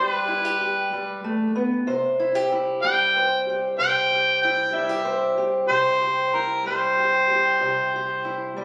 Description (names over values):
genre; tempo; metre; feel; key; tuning
acoustic country blues, solo or duo; 63 BPM (dotted quarters); 12/8; straight; C major; A4 = 440 Hz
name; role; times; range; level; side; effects
mellow harmonica; melody; 0.0-8.5 s; Bb4 to G5; -23 LUFS; equal; tape echo
fingerpicked steel-string acoustic guitar; accompaniment; 0.0-8.6 s; C3 to C5; -27 LUFS; equal; none
room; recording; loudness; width
moderate small room ambience, RT60 0.5 s; recorded on a phone in the room, studio reverb; -22 LUFS; mono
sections
0.0-1.9 A section; 1.9-8.6 A section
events
none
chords
0.0 G; 1.9 C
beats
0.92 | 1.88 2.83 3.79 4.75 | 5.70 6.66 7.62 8.58